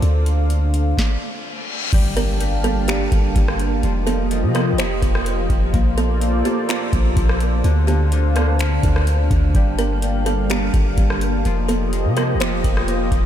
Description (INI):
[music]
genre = hip hop, atmospheric cloud-rap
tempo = 126 BPM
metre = 4/4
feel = half-time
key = G minor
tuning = A4 = 440 Hz
[part]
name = dark analog pad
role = sustained chords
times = 0.0-13.3 s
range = D3 to A5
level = -24 LUFS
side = equal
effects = chorus, sidechain pumping
[part]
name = long sustained 808-style bass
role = bass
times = 0.0-13.3 s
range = F1 to C3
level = -19 LUFS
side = equal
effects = none
[part]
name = booming analog drum machine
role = drums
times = 0.0-13.3 s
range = crash cymbal, finger snaps, hi-hat, kick drum, rim click, snare drum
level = -22 LUFS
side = equal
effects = none
[part]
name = reverse cymbal and impact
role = sound effects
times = 1.3-3.8 s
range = none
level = -30 LUFS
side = left 2 dB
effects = none
[part]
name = Celtic harp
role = arpeggios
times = 1.9-13.3 s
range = D3 to Bb3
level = -30 LUFS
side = left 6 dB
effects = diffuse ambient delay
[part]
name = kalimba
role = melody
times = 2.2-12.9 s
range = F4 to C5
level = -26 LUFS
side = right 3 dB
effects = diffuse ambient delay
[sound]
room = light reverb, digital ambience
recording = none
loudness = -16 LUFS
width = side -10 dB against mid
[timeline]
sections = 0.0-1.9 A section; 1.9-13.3 B section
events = stop 1.0-1.9; reverse cymbal 1.3-1.9; impact 1.9-3.8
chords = 0.0 Dm7; 1.9 Gm7; 3.8 F7sus4; 5.7 Bbmaj7; 7.6 Dm7; 9.5 Gm7; 11.5 F7sus4